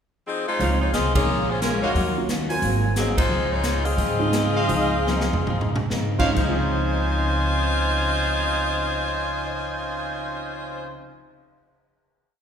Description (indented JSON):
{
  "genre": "jazz, big band swing",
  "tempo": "125-178 BPM",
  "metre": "4/4",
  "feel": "swing 64% on 8ths",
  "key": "Db major",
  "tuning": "A4 = 440 Hz",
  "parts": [
    { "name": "edgy saxophone section", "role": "melody", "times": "0.3-11.0 s", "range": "F3 to Ab5", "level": "-25 LUFS", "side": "left 2 dB", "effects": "none" },
    { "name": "clear upright piano", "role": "accompaniment", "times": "0.6-11.1 s", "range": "Db2 to F4", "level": "-29 LUFS", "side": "right 4 dB", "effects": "none" },
    { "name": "picked steel-string acoustic guitar", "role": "accompaniment", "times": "0.6-11.1 s", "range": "Ab2 to F4", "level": "-30 LUFS", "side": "left 2 dB", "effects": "none" },
    { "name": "clear trumpet section", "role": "stabs", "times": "0.6-11.0 s", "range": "Db4 to Ab5", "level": "-28 LUFS", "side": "right 1 dB", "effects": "none" },
    { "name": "upright bass", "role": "bass", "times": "0.6-10.9 s", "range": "Ab1 to Ab2", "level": "-26 LUFS", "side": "equal", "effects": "none" },
    { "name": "swinging big-band drum kit", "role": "drums", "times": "0.6-10.1 s", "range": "crash cymbal, cymbal swell, hi-hat, kick drum, ride cymbal, snare drum, toms", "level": "-27 LUFS", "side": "equal", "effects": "none" }
  ],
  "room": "wet recital hall reverb, RT60 1.5 s",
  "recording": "recorded in a church or concert hall",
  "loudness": "-20 LUFS",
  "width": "side -8 dB against mid",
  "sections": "0.0-0.6 pickup bar; 0.6-6.4 A section; 6.4-10.2 final chord",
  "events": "band accent 1.1, 3.1; slowing down 3.3-6.4; drum fill 5.1-5.9",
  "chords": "0.0 Fm7; 0.6 Dbmaj9; 1.3 Bbm7; 1.9 Ebm9; 2.6 Ab9; 3.3 Dbmaj9",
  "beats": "0.26 | 0.60 0.94 1.27 1.61 | 1.95 2.28 2.62 2.96 | 3.29 3.63 3.97 4.33 | 4.69 5.07 5.48 5.91 | 6.37 6.85 7.33 7.81 | 8.29 8.77 9.25 9.73"
}